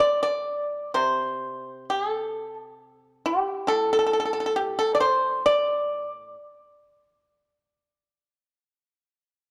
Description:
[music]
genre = chinese traditional, Chinese solo plucked strings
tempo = 59-69 BPM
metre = 4/4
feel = rubato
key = unclear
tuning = A4 = 441 Hz
[part]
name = pipa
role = solo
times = 0.0-9.5 s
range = A2 to D5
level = -25 LUFS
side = equal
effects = none
[sound]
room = moderate recital hall reverb, RT60 1.7 s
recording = dark, warm production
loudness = -25 LUFS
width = mono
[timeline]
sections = 0.0-9.5 A section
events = none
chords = none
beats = | 0.02 0.96 1.89 2.80 | 3.70 4.59 5.46 6.37 | 7.29 8.22 9.20

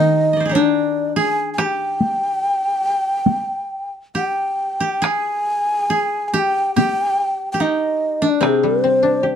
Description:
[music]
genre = japanese traditional, Japanese chamber music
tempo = 65-75 BPM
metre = 4/4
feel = rubato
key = G miyako bushi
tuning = A4 = 441 Hz
[part]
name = breathy mellow long shakuhachi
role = melody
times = 0.0-9.4 s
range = C5 to Ab5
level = -19 LUFS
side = equal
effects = none
[part]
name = koto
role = second line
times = 0.0-9.4 s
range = C4 to Eb5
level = -21 LUFS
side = left 1 dB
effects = none
[part]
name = koto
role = accompaniment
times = 0.0-2.4, 8.4-9.4 s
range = C3 to G4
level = -21 LUFS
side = left 4 dB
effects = none
[part]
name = taiko ensemble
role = percussion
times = 1.6-8.6 s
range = none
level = -19 LUFS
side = equal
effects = none
[sound]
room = moderate studio reverb, RT60 0.7 s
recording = dark, warm production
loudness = -16 LUFS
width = side -8 dB against mid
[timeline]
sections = 0.0-5.0 A section; 5.0-9.4 B section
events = none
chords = none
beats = 0.74 | 1.58 2.42 3.27 4.16 | 5.04 5.91 6.77 7.61 | 8.43 9.23

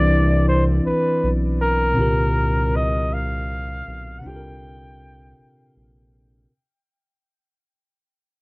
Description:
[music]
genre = slow six-eight R&B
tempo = 53 BPM (dotted quarters)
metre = 6/8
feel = straight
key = unclear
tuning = A4 = 441 Hz
[part]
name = clear flugelhorn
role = melody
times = 0.0-5.8 s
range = Bb4 to G5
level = -23 LUFS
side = equal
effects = none
[part]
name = bell-like tine electric piano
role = accompaniment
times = 0.0-6.5 s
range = Bb2 to D5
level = -23 LUFS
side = equal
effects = none
[part]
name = round analog bass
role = bass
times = 0.0-6.5 s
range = Bb1 to C2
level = -22 LUFS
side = equal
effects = none
[sound]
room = moderate studio ambience, RT60 0.4 s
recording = worn, warbling old tape, cassette tape, warbly pitch drift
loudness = -17 LUFS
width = side -25 dB against mid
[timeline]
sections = 0.0-6.5 A section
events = fade-out 0.0-6.5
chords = 0.0 Cmaj7; 2.0 Bbmaj13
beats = 0.84 | 1.97 3.10 | 4.23 5.37

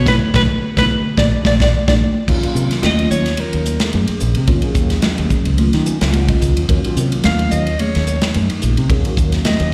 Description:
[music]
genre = electric jazz fusion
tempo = 109 BPM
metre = 4/4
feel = swing 55% on 16ths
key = Eb minor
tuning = A4 = 440 Hz
[part]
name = mellow soprano saxophone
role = melody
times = 0.0-9.7 s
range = Bb4 to F5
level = -23 LUFS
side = equal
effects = slapback echo, analog delay
[part]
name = ethereal airy pad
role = sustained chords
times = 0.3-2.3 s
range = C#3 to G#4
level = -35 LUFS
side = equal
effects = none
[part]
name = modern bright fingered electric bass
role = bass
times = 0.0-9.7 s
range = A#1 to Eb3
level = -20 LUFS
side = equal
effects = none
[part]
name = mellow tine electric piano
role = accompaniment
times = 0.1-9.7 s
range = Eb3 to Ab5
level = -25 LUFS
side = equal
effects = phaser
[part]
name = modern studio drum kit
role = drums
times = 0.1-9.7 s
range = crash cymbal, hi-hat, kick drum, ride cymbal, snare drum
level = -21 LUFS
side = equal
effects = none
[part]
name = congas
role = percussion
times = 0.1-9.6 s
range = none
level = -24 LUFS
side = equal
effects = slapback echo
[sound]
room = light reverb, studio reverb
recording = live gig heard through the venue's PA, recital hall reverb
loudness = -16 LUFS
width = mono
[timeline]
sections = 0.0-2.3 A section; 2.3-9.7 B section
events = band accent 0.1-2.3; drum fill 1.7-2.3; soprano saxophone solo 2.3-9.7; tine electric piano fill 5.6-6.7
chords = 0.1 E13/B; 1.2 A#7; 2.3 Ebm9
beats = | 0.07 0.63 1.18 1.73 | 2.28 2.83 3.39 3.94 | 4.49 5.04 5.59 6.15 | 6.70 7.25 7.80 8.35 | 8.91 9.46

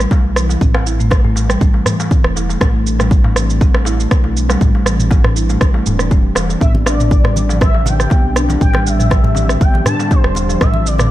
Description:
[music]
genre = afro house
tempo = 120 BPM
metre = 4/4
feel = swing 53% on 16ths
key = A minor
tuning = A4 = 440 Hz
[part]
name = warm analog pad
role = sustained chords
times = 0.0-11.1 s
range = D3 to G4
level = -24 LUFS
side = equal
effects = chorus, sidechain pumping
[part]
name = marimba with soft mallets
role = arpeggios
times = 0.0-10.9 s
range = D3 to E4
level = -21 LUFS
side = equal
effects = sidechain pumping, ping-pong delay
[part]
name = round analog bass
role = bass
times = 0.0-11.1 s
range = E1 to B1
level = -18 LUFS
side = equal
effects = sidechain pumping
[part]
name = afro-pop drum kit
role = drums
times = 0.0-11.1 s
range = rim click, shaker, toms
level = -20 LUFS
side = right 2 dB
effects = small room ambience
[part]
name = electronic kick drum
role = drums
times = 0.1-10.7 s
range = none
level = -12 LUFS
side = equal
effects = overdrive, small room ambience
[part]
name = darbuka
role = percussion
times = 0.1-11.1 s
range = none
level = -24 LUFS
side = left 2 dB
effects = none
[part]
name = expressive portamento lead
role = melody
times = 6.6-11.1 s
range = C5 to A5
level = -21 LUFS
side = left 1 dB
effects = ensemble chorus, ping-pong delay
[part]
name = congas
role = percussion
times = 6.7-11.1 s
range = none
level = -25 LUFS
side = right 1 dB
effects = none
[sound]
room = little or no reverb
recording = dark, warm production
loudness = -11 LUFS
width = side -14 dB against mid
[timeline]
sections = 0.0-11.1 A section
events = none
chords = 0.0 Am7; 6.6 Gsus4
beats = 0.11 | 0.61 1.11 1.61 2.11 | 2.61 3.11 3.61 4.11 | 4.61 5.11 5.61 6.11 | 6.61 7.11 7.61 8.11 | 8.61 9.11 9.61 10.11 | 10.61

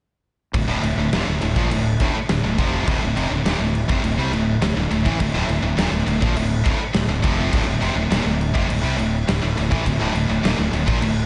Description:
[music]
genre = heavy metal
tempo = 103 BPM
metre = 4/4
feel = straight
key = D minor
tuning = A4 = 438 Hz
[part]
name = heavy high-gain guitar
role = riff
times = 0.5-11.3 s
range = D2 to G3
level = -28 LUFS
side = equal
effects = distortion
[part]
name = high-gain distorted guitar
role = riff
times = 0.5-11.2 s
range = D2 to G3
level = -26 LUFS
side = equal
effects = distortion, slapback echo
[part]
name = fuzz fingered electric bass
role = bass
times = 0.5-11.3 s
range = D1 to C2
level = -26 LUFS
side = equal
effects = overdrive
[part]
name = big rock drum kit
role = drums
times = 0.5-11.2 s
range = crash cymbal, kick drum, snare drum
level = -26 LUFS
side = equal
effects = none
[sound]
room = moderate scoring stage reverb, RT60 2.0 s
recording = big arena sound, nothing above 10.7 kHz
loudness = -20 LUFS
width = mono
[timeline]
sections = 0.5-11.3 A section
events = none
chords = 0.5 Dm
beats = | 0.54 1.13 1.71 2.29 | 2.88 3.46 4.04 4.62 | 5.21 5.79 6.37 6.95 | 7.53 8.12 8.70 9.28 | 9.86 10.44 11.03

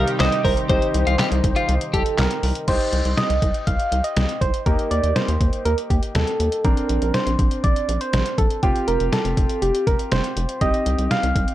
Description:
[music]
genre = synth-pop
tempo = 121 BPM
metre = 4/4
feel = straight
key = C dorian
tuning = A4 = 440 Hz
[part]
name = soft struck synth lead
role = melody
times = 0.0-11.5 s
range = G4 to F5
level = -24 LUFS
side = right 2 dB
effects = chorus, phaser, slapback echo
[part]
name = twelve-string electric guitar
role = second line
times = 0.0-2.0 s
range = F4 to C5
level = -25 LUFS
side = left 4 dB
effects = slapback echo
[part]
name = clear concert grand piano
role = accompaniment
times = 0.0-11.5 s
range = Bb3 to C5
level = -28 LUFS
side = left 2 dB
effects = none
[part]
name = chorused pulse-width pad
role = sustained chords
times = 0.0-2.6 s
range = C3 to G4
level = -28 LUFS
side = equal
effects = none
[part]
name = rubbery square bass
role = bass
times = 0.0-11.5 s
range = F1 to Eb2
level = -22 LUFS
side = equal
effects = none
[part]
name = detuned 8-bit digital drum machine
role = drums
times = 0.1-11.5 s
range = crash cymbal, handclaps, hi-hat, kick drum, snare drum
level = -22 LUFS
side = equal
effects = none
[sound]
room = light reverb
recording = none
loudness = -18 LUFS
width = side -14 dB against mid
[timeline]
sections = 0.0-2.7 A section; 2.7-11.5 B section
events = none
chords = 0.0 Cm; 4.7 Eb; 6.6 Bbadd9; 8.6 Fsus2; 10.6 Cm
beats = 0.20 | 0.70 1.19 1.69 2.18 | 2.68 3.17 3.67 4.17 | 4.66 5.16 5.65 6.15 | 6.65 7.14 7.64 8.13 | 8.63 9.12 9.62 10.12 | 10.61 11.11

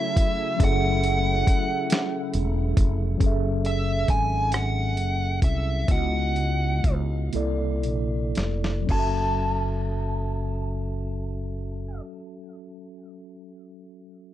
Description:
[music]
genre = slow six-eight R&B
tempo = 37-46 BPM (dotted quarters)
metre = 6/8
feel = straight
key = F# minor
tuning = A4 = 442 Hz
[part]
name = dark smooth lead guitar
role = melody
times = 0.0-12.0 s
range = E5 to A5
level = -28 LUFS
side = equal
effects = overdrive, low-pass filter, tape echo
[part]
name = mellow tine electric piano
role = accompaniment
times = 0.0-14.3 s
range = C3 to E5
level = -30 LUFS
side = equal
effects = medium stereo tremolo, low-pass filter
[part]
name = warm analog pad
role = sustained chords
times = 0.0-3.2 s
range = C#3 to E4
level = -34 LUFS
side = equal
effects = chorus
[part]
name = dusty soul sampler-style drum kit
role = drums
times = 0.2-9.1 s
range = crash cymbal, hi-hat, kick drum, rim click, snare drum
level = -23 LUFS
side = equal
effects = none
[part]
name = mellow fretless electric bass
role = bass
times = 0.6-12.0 s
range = E1 to C#2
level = -26 LUFS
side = equal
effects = none
[sound]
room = little or no reverb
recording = dark, warm production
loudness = -22 LUFS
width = side -13 dB against mid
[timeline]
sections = 0.0-3.2 A section; 3.2-8.9 B section; 8.9-12.2 C section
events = slowing down 3.2-8.9; filter sweep 3.2-8.9; drum fill 7.3-8.9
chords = 0.0 F#m7; 5.9 C#m11; 7.3 C13; 8.9 F#m7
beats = | 0.60 1.90 | 3.21 4.53 | 5.89 7.33 | 8.89 10.52

